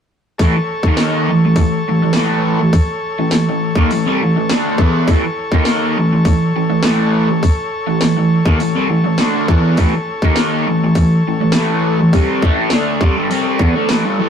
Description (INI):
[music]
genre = garage rock duo or trio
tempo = 102 BPM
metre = 4/4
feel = straight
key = A mixolydian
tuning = A4 = 440 Hz
[part]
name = combo organ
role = sustained chords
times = 0.4-14.3 s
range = A4 to C#5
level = -22 LUFS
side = left 2 dB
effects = none
[part]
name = crunchy overdriven guitar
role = riff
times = 0.4-14.3 s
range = G2 to E4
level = -14 LUFS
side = equal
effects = phaser
[part]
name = garage drum kit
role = drums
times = 0.4-14.0 s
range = hi-hat, kick drum, snare drum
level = -15 LUFS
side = equal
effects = none
[sound]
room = moderate stone room reverb, RT60 1.3 s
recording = rough rehearsal-room recording, tube saturation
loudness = -12 LUFS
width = side -8 dB against mid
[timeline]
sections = 0.4-14.3 A section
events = none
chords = 0.4 A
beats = | 0.40 0.98 1.57 2.16 | 2.74 3.33 3.92 4.50 | 5.09 5.68 6.26 6.85 | 7.44 8.03 8.61 9.20 | 9.79 10.37 10.96 11.54 | 12.13 12.72 13.31 13.89